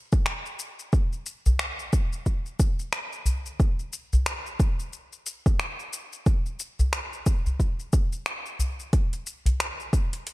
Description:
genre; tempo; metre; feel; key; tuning
downtempo; 90 BPM; 4/4; swing 59% on 16ths; none; none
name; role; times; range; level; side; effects
deep house drum kit; drums; 0.1-10.3 s; finger snaps, hi-hat, shaker; -31 LUFS; left 1 dB; overdrive, studio reverb
electronic kick drum; drums; 0.1-10.1 s; none; -22 LUFS; equal; overdrive, studio reverb
udu; percussion; 1.5-9.6 s; none; -23 LUFS; equal; none
room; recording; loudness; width
little or no reverb; dark, warm production; -24 LUFS; side -19 dB against mid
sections
0.0-10.3 A section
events
none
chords
none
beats
0.26 | 0.93 1.60 2.26 2.93 | 3.60 4.26 4.93 5.60 | 6.26 6.93 7.60 8.26 | 8.93 9.60 10.26

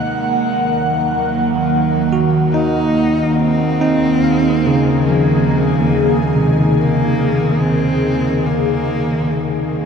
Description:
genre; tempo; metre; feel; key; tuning
ambient; 71 BPM; 4/4; straight; unclear; A4 = 441 Hz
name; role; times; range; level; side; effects
warm cello; melody; 0.0-9.7 s; Gb3 to Eb4; -23 LUFS; equal; ping-pong delay
airy breathy pad; sustained chords; 0.0-9.9 s; Eb3 to Gb5; -17 LUFS; right 1 dB; chorus, phaser
barky tine electric piano; arpeggios; 0.0-9.9 s; C3 to Gb6; -18 LUFS; left 1 dB; auto-pan, ping-pong delay
rich chamber double bass section; bass; 0.0-9.9 s; Eb2; -28 LUFS; left 2 dB; none
bowed-like drone; drone; 0.0-9.9 s; Eb3; -22 LUFS; right 1 dB; built-in reverb
room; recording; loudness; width
wet huge ambient reverb, RT60 8.9 s; none; -13 LUFS; side -6 dB against mid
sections
0.0-9.9 A section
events
fade-in on double bass section 0.0-9.9; fade-in on cello 0.0-9.9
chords
0.0 Dbmaj9/Eb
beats
| 0.01 0.86 1.70 2.55 | 3.39 4.24 5.08 5.93 | 6.77 7.62 8.46 9.31

